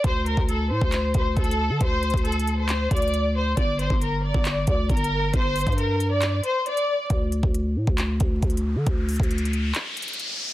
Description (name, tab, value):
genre	hip hop, trap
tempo	136 BPM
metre	4/4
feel	half-time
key	unclear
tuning	A4 = 436 Hz
part	clear studio violin section	melody	0.0-7.1 s	A4 to D5	-25 LUFS	left 1 dB	low-pass filter, digital delay
part	growling 808-style bass	bass	0.0-9.7 s	G1 to D3	-24 LUFS	equal	none
part	trap drum kit	drums	0.0-10.3 s	handclaps, hi-hat, kick drum	-24 LUFS	equal	none
part	riser	sound effects	8.5-10.5 s	none	-32 LUFS	left 1 dB	none
room	little or no reverb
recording	dense, heavily limited modern master, vinyl crackle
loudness	-21 LUFS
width	side -15 dB against mid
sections	0.0-10.5 A section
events	riser 8.5-10.5; break 9.7-10.5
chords	0.0 D5; 3.6 Gm; 7.1 D5